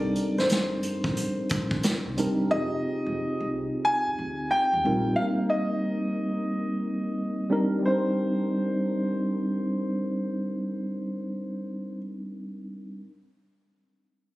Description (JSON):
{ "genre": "R&B, neo-soul", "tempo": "90 BPM", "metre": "4/4", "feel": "swing 63% on 16ths", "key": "C minor", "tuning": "A4 = 440 Hz", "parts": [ { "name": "warm concert grand piano", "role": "melody", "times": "0.0-12.0 s", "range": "C5 to Ab5", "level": "-30 LUFS", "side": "equal", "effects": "slapback echo" }, { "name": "mellow tine electric piano", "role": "accompaniment", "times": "0.0-13.0 s", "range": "G3 to Bb4", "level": "-27 LUFS", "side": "equal", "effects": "medium stereo tremolo" }, { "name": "upright bass", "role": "bass", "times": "0.0-5.1 s", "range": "F1 to Eb2", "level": "-36 LUFS", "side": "equal", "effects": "none" }, { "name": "unplugged drum kit", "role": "drums", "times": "0.2-2.4 s", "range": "hi-hat, kick drum, snare drum", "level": "-28 LUFS", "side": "equal", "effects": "none" } ], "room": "small room reverb", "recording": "recorded on a phone in the room, studio reverb", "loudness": "-25 LUFS", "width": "side -18 dB against mid", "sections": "0.0-7.8 A section; 7.8-10.5 B section", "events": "none", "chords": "0.0 Cm9; 2.5 Fm9; 5.2 Cm9" }